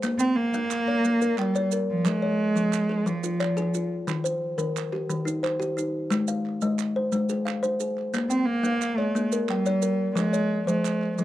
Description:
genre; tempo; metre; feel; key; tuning
southern african traditional, mbira-style interlocking cycle; 118 BPM (dotted quarters); 12/8; straight; Bb equiheptatonic; A4 = 440 Hz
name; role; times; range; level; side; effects
kalimba; arpeggios; 0.0-11.2 s; Eb3 to G5-43c; -26 LUFS; left 2 dB; none
group handclap; percussion; 0.0-11.1 s; none; -38 LUFS; right 11 dB; none
maracas; percussion; 0.0-11.2 s; none; -38 LUFS; right 18 dB; none
rich cello; melody; 0.2-3.9, 8.3-11.2 s; F3 to C4-26c; -24 LUFS; right 2 dB; none
room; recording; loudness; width
small room ambience; dry, close 1970s-style studio recording; -23 LUFS; side -14 dB against mid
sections
0.0-11.2 A section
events
none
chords
0.0 Bbm; 2.1 Fm; 4.1 Eb; 6.1 Ab; 8.1 Bbm; 10.2 Fm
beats
| 0.04 0.54 1.05 1.55 | 2.06 2.56 3.07 3.58 | 4.08 4.59 5.09 5.60 | 6.11 6.62 7.12 7.63 | 8.14 8.64 9.15 9.66 | 10.17 10.68 11.19

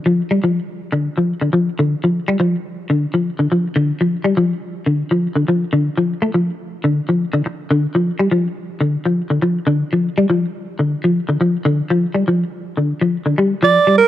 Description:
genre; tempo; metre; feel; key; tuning
afrobeat; 122 BPM; 4/4; straight; unclear; A4 = 440 Hz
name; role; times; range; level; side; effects
semi-hollow electric guitar; arpeggios; 0.1-14.0 s; D3 to A3; -16 LUFS; left 1 dB; ensemble chorus
breathy alto saxophone; melody; 13.6-14.1 s; Bb4 to D5; -10 LUFS; right 5 dB; none
room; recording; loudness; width
light reverb; dry, close 1970s-style studio recording; -15 LUFS; side -13 dB against mid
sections
0.0-13.6 A section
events
none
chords
none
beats
0.32 0.81 1.30 | 1.79 2.28 2.77 3.27 | 3.76 4.25 4.75 5.24 | 5.73 6.22 6.72 7.21 | 7.71 8.20 8.69 9.19 | 9.68 10.17 10.67 11.16 | 11.65 12.15 12.64 13.13 | 13.62

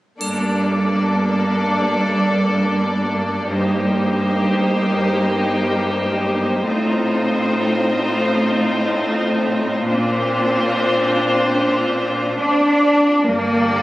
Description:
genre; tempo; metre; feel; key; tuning
cinematic, emotional film score for orchestra; 74 BPM; 4/4; rubato; G minor; A4 = 440 Hz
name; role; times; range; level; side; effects
warm studio violin section; second line; 0.2-13.8 s; F4 to D5; -22 LUFS; left 1 dB; none
rich studio viola section; accompaniment; 0.2-13.8 s; Bb3 to G4; -22 LUFS; equal; none
rich studio cello section; bass; 0.2-13.8 s; G2 to D4; -19 LUFS; right 1 dB; none
triangle; percussion; 0.2-1.8 s; none; -31 LUFS; left 1 dB; none
dark clarinet; second line; 12.4-13.8 s; Bb4 to D5; -24 LUFS; left 1 dB; none
warm studio violin section; melody; 13.3-13.8 s; D5; -25 LUFS; left 2 dB; none
concert harp; arpeggios; 13.3-13.8 s; G2 to D4; -26 LUFS; left 3 dB; none
warm studio double bass section; bass; 13.3-13.8 s; G1; -31 LUFS; right 1 dB; none
room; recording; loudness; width
moderate scoring stage reverb, RT60 1.6 s; recorded on a phone in the room, studio reverb, compression; -16 LUFS; side -17 dB against mid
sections
0.2-13.3 A section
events
none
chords
0.2 Gmadd9; 3.5 Cm7/G; 6.6 F7/A; 9.9 Bbadd9; 13.3 Gmadd9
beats
| 0.21 1.04 1.86 2.66 | 3.46 4.26 5.07 5.85 | 6.64 7.43 8.24 9.06 | 9.87 10.69 11.54 12.40 | 13.27

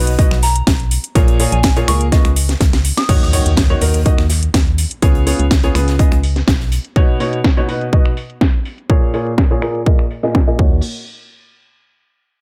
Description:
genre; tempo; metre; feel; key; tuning
piano house; 124 BPM; 4/4; straight; Eb minor; A4 = 440 Hz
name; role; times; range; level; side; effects
clear upright piano; riff; 0.0-10.8 s; Bb2 to D#5; -22 LUFS; equal; sidechain pumping, low-pass filter, digital delay
organ-like FM bass; bass; 0.0-6.8, 10.6-10.8 s; Bb1 to Eb2; -19 LUFS; equal; sidechain pumping
house drum kit; drums; 0.1-10.7 s; crash cymbal, finger snaps, hi-hat, snare drum; -22 LUFS; equal; low-pass filter on hats, low-pass filter on snare, low-pass filter on cymbals
electronic kick drum; drums; 0.2-10.7 s; none; -16 LUFS; equal; none
modern studio drum kit; drums; 0.2-6.8 s; hi-hat, snare drum; -32 LUFS; equal; sidechain pumping on hats, high-pass filter on hats, high-pass filter on snare, high-pass filter on room
soft synth bell; melody; 0.4-3.1 s; Ab5 to Eb6; -25 LUFS; equal; chorus, phaser, digital delay
impact; sound effects; 3.1-5.0 s; none; -27 LUFS; equal; none
room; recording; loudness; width
small room ambience; none; -15 LUFS; mono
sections
0.0-3.1 A section; 3.1-10.8 B section; 10.8-12.4 C section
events
drop 0.0-3.1; drum fill 2.6-3.1; impact 3.1-5.0; filter sweep on drum 3.1-10.8; filter sweep on upright piano 3.1-10.8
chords
0.0 B; 1.2 Bbm7; 2.1 Db7; 3.1 Ebm7; 5.0 Db7; 6.7 Badd9; 8.9 Bbm7; 10.6 Ebm7; 10.8 N.C.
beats
0.19 0.67 | 1.15 1.64 2.12 2.61 | 3.09 3.57 4.06 4.54 | 5.03 5.51 5.99 6.48 | 6.96 7.45 7.93 8.41 | 8.90 9.38 9.86 10.35

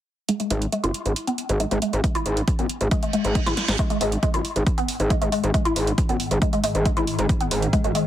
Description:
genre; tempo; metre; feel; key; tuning
driving peak-time techno; 137 BPM; 4/4; straight; unclear; A4 = 444 Hz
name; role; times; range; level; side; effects
woody wave-folded pluck; riff; 0.3-8.0 s; G#3 to E4; -26 LUFS; left 1 dB; tube saturation, ensemble chorus, sidechain pumping, ping-pong delay
techno drum kit; drums; 0.3-8.0 s; hi-hat, snare drum; -29 LUFS; right 2 dB; none
gritty driven synth bass; bass; 0.5-7.9 s; F#1 to G#1; -23 LUFS; equal; sidechain pumping
electronic kick drum; drums; 2.0-7.8 s; none; -23 LUFS; equal; overdrive
reverse cymbal; sound effects; 3.1-3.8 s; none; -31 LUFS; right 7 dB; none
swarming drone; drone; 5.4-8.1 s; G#2 to D#3; -30 LUFS; left 1 dB; built-in reverb, sidechain pumping
room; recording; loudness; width
light reverb; heavily compressed radio sound, multiband compression; -20 LUFS; side -12 dB against mid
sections
0.3-3.8 A section; 3.8-8.1 B section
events
filter sweep on analog synth bass 0.3-3.8; filter sweep on synth arpeggio sound 0.3-3.8; reverse cymbal 3.1-3.8; drum fill 3.5-3.8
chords
0.3 N.C.; 3.8 G#5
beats
| 0.29 0.72 1.16 1.60 | 2.04 2.48 2.91 3.35 | 3.79 4.23 4.67 5.10 | 5.54 5.98 6.42 6.86 | 7.29 7.73

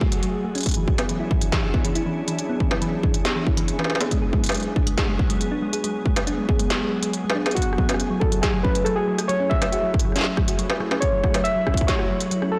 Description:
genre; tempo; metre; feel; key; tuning
IDM; 139 BPM; 4/4; straight; F# minor; A4 = 441 Hz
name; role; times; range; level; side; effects
glassy FM pad; sustained chords; 0.0-12.6 s; F#3 to G#4; -31 LUFS; equal; ensemble chorus, built-in reverb
thumb-piano-like synth pluck; arpeggios; 0.0-12.5 s; E3 to G#4; -30 LUFS; equal; chorus, digital delay
electronic kick drum; drums; 0.0-12.0 s; none; -25 LUFS; equal; small room ambience
industrial drum kit; drums; 0.1-12.5 s; hi-hat, rim click, snare drum, struck metal; -29 LUFS; equal; small room ambience
warbly lo-fi synth keys; melody; 7.5-12.6 s; F#4 to E5; -27 LUFS; equal; chorus, vintage 12-bit sampler grit, tape echo
room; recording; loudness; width
moderate lush hall reverb, RT60 2.2 s; blown-out, overdriven recording, overdrive; -22 LUFS; mono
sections
0.0-12.6 A section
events
kick drops out 6.7-7.6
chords
0.0 F#madd9; 0.7 E13; 4.1 G#m7; 7.6 F#m9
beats
0.23 | 0.66 1.09 1.52 1.96 | 2.39 2.82 3.25 3.68 | 4.11 4.54 4.98 5.41 | 5.84 6.27 6.70 7.13 | 7.57 8.00 8.43 8.86 | 9.29 9.72 10.16 10.59 | 11.02 11.45 11.88 12.31

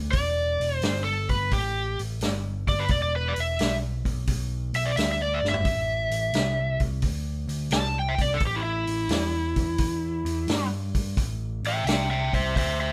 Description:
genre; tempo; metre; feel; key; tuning
blues rock power trio and southern rock; 87 BPM; 4/4; swing 68% on 8ths; unclear; A4 = 440 Hz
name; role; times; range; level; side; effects
overdriven picked electric bass; bass; 0.0-12.9 s; E1 to G2; -32 LUFS; equal; none
overdriven slide guitar; melody; 0.1-12.9 s; E4 to A5; -29 LUFS; equal; none
vintage drum kit; drums; 0.1-12.8 s; hi-hat, kick drum, snare drum, toms; -31 LUFS; equal; none
room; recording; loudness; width
light reverb; band playing live in one room; -26 LUFS; mono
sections
0.0-12.9 A section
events
electric slide guitar solo 0.0-12.9; drum fill 5.3-5.7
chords
0.0 Em; 5.7 Am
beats
| 0.14 0.83 1.52 2.21 | 2.90 3.59 4.28 4.97 | 5.66 6.35 7.04 7.73 | 8.42 9.11 9.80 10.49 | 11.18 11.87 12.56

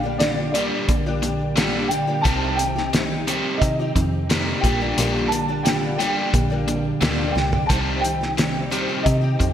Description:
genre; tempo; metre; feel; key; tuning
folk rock and heartland rock; 88 BPM; 4/4; straight; G minor; A4 = 443 Hz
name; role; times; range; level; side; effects
dark grand piano; melody; 0.0-9.5 s; D5 to A5; -26 LUFS; right 1 dB; ensemble chorus
picked old ladder-braced acoustic guitar; accompaniment; 0.0-9.5 s; Bb2 to G4; -27 LUFS; left 4 dB; ensemble chorus
overdriven electric guitar; riff; 0.0-9.5 s; Bb2 to G3; -24 LUFS; right 1 dB; none
deep dub picked electric bass; bass; 0.0-9.5 s; Bb1 to C3; -26 LUFS; equal; none
cloth-damped thuddy drum kit; drums; 0.2-9.5 s; hi-hat, kick drum, snare drum, toms; -23 LUFS; equal; gated reverb
room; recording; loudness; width
moderate lush hall reverb, RT60 1.7 s, small room reverb; bright 1980s-style digital production; -19 LUFS; side -10 dB against mid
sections
0.0-9.5 A section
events
drum fill 7.4-7.7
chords
0.0 Gm/Bb; 2.3 Cm; 4.6 Gm/Bb; 7.7 Cm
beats
0.20 0.89 1.57 | 2.25 2.93 3.62 4.30 | 4.98 5.66 6.34 7.02 | 7.70 8.38 9.06

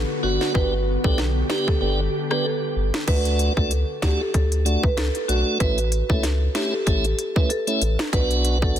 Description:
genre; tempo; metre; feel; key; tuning
dancehall; 95 BPM; 4/4; swing 56% on 16ths; D major; A4 = 439 Hz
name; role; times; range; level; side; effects
marimba with medium mallets; melody; 0.0-8.7 s; F#4 to B4; -26 LUFS; right 1 dB; tape echo
ethereal airy pad; sustained chords; 0.0-3.1 s; D3 to G4; -30 LUFS; equal; ensemble chorus, built-in reverb, sidechain pumping
saturated sub bass; bass; 0.0-8.8 s; G1 to D2; -23 LUFS; equal; none
tonewheel organ; accompaniment; 0.2-8.8 s; A3 to G4; -26 LUFS; right 2 dB; slow rotary speaker
island pop drum kit; drums; 0.4-8.8 s; crash cymbal, hi-hat, kick drum, rim click, snare drum; -24 LUFS; equal; overdrive
room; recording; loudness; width
light reverb; dense, heavily limited modern master; -19 LUFS; side -10 dB against mid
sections
0.0-3.1 A section; 3.1-8.8 B section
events
kick muted 1.8-3.1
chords
0.0 Bm; 0.6 G; 3.1 D; 5.6 A; 8.1 Bm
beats
| 0.55 1.18 1.81 2.45 | 3.08 3.71 4.34 4.97 | 5.60 6.24 6.87 7.50 | 8.13 8.76

